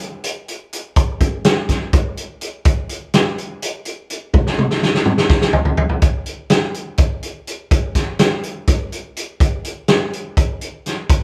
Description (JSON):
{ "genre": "rock", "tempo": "249 BPM (eighths)", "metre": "7/8", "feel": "straight", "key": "none", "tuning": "none", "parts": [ { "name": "loose indie drum kit", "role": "drums", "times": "0.0-11.2 s", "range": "hi-hat, kick drum, snare drum, toms", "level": "-18 LUFS", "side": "equal", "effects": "none" } ], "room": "moderate studio reverb, RT60 0.6 s", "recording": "band playing live in one room", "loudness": "-18 LUFS", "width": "mono", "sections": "0.0-6.0 A section; 6.0-11.2 B section", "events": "drum fill 4.3-6.0", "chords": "none" }